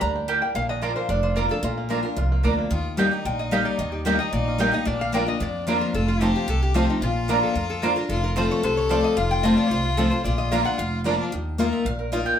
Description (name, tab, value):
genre	bluegrass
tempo	223 BPM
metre	4/4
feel	straight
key	Bb major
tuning	A4 = 440 Hz
part	bluegrass banjo	melody	0.0-12.2 s	Bb3 to Bb4	-31 LUFS	right 2 dB	none
part	lap resonator guitar	melody	0.0-11.0 s	Eb4 to Bb5	-29 LUFS	left 2 dB	none
part	picked steel-string acoustic guitar	accompaniment	0.0-12.4 s	F2 to Bb4	-25 LUFS	left 2 dB	none
part	upright bass	bass	0.0-12.2 s	F1 to F2	-26 LUFS	right 1 dB	none
part	mandolin	stabs	0.3-12.4 s	Bb3 to Bb5	-26 LUFS	right 4 dB	none
part	clear fiddle	second line	2.7-11.3 s	D4 to A4	-28 LUFS	left 4 dB	none
room	wet small room reverb, RT60 0.5 s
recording	band playing live in one room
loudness	-20 LUFS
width	side -9 dB against mid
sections	0.0-2.7 A section; 2.7-11.3 B section; 11.3-12.4 C section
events	mandolin solo 11.3-12.4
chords	0.0 Gm; 0.6 Bb; 2.7 Eb; 4.9 Bb; 5.9 F; 7.0 Bb; 8.1 F; 10.2 Bb; 11.3 Ebsus2